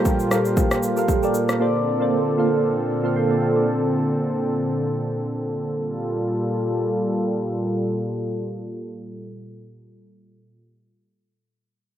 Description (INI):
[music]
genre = amapiano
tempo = 116 BPM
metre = 4/4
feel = swing 55% on 16ths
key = G minor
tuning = A4 = 440 Hz
[part]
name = soft electric-piano-like synth keys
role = accompaniment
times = 0.0-3.8 s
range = G3 to C6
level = -21 LUFS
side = right 2 dB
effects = chorus, phaser, low-pass filter
[part]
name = warm analog pad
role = sustained chords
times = 0.0-10.6 s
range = Bb2 to A4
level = -23 LUFS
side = equal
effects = chorus, sidechain pumping, low-pass filter
[part]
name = deep house drum kit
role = drums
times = 0.1-1.6 s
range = kick drum, rim click, shaker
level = -23 LUFS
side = equal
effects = none
[sound]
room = moderate lush hall reverb, RT60 1.9 s, digital ambience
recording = rough home demo mix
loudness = -20 LUFS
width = side -10 dB against mid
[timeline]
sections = 0.0-5.7 A section; 5.7-9.9 B section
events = filter sweep 0.0-5.7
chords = 0.0 Gm9